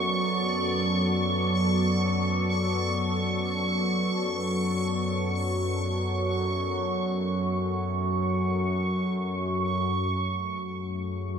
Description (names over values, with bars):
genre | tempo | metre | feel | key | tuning
dark ambient drone | free time | none | none | unclear | A4 = 440 Hz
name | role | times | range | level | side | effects
sweeping resonant pad | sustained chords | 0.0-11.4 s | F#3 to D5 | -32 LUFS | right 1 dB | chorus, shimmer reverb
analog drone | drone | 0.0-11.4 s | F#2 to F#3 | -27 LUFS | equal | chorus
bubbling stepped-filter texture | texture | 0.0-10.1 s | C#6 | -30 LUFS | right 2 dB | chorus, built-in reverb, shimmer reverb
room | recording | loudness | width
wet cathedral reverb, RT60 7.0 s | none | -25 LUFS | side -7 dB against mid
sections
0.0-10.1 A section; 10.1-11.4 B section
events
fade-out on analog synth pad 0.0-10.1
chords
0.0 Bm7/F#; 10.1 F#madd9